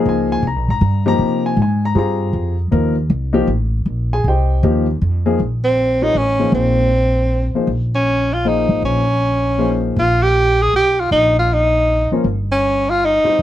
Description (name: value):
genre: jazz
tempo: 158 BPM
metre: 3/4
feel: swing 64% on 8ths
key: Bb dorian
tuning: A4 = 440 Hz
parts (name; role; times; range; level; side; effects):
- warm concert grand piano; accompaniment; 0.0-10.0, 12.1-13.4 s; F3 to Bb5; -18 LUFS; left 3 dB; none
- upright bass; bass; 0.1-13.4 s; G1 to C3; -18 LUFS; equal; none
- breathy tenor saxophone; melody; 5.6-13.4 s; C4 to Ab4; -15 LUFS; equal; plate reverb
room: light reverb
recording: none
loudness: -14 LUFS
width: side -12 dB against mid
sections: 0.0-5.4 A section; 5.4-13.4 B section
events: none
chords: 0.0 Bbm9; 0.8 Cm; 5.4 Bbm9; 10.0 Cm/Bb (rootless)